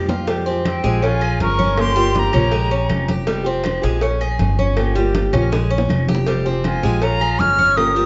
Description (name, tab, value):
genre	latin, Cuban son and guajira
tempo	160 BPM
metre	4/4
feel	straight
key	unclear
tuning	A4 = 440 Hz
part	nylon-string guitar	accompaniment	0.0-8.1 s	C3 to G4	-28 LUFS	equal	none
part	Cuban tres	arpeggios	0.0-8.1 s	G3 to Ab4	-26 LUFS	equal	none
part	upright bass	bass	0.0-8.1 s	F1 to F2	-23 LUFS	equal	none
part	bongos and cowbell	percussion	0.1-8.0 s	none	-29 LUFS	equal	none
part	congas	percussion	0.1-8.1 s	none	-28 LUFS	equal	none
part	silver concert flute	melody	0.7-3.1, 6.7-8.1 s	G5 to F6	-22 LUFS	equal	none
part	warm trumpet	second line	0.7-3.1, 6.7-8.1 s	C4 to Db5	-30 LUFS	equal	none
part	claves	percussion	0.7-8.0 s	none	-35 LUFS	equal	none
room	moderate large studio reverb, RT60 1.3 s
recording	nothing above 7.8 kHz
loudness	-18 LUFS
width	mono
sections	0.3-8.1 A section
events	drum fill 0.0, 5.5-6.3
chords	0.3 Fmadd9; 1.0 Bbm7; 1.8 Gm7b5; 2.5 Bbm7; 3.3 Fmadd9; 4.0 Bbm7; 4.8 Gm7b5; 5.5 Bbm7; 6.3 Fmadd9; 7.0 Bbm7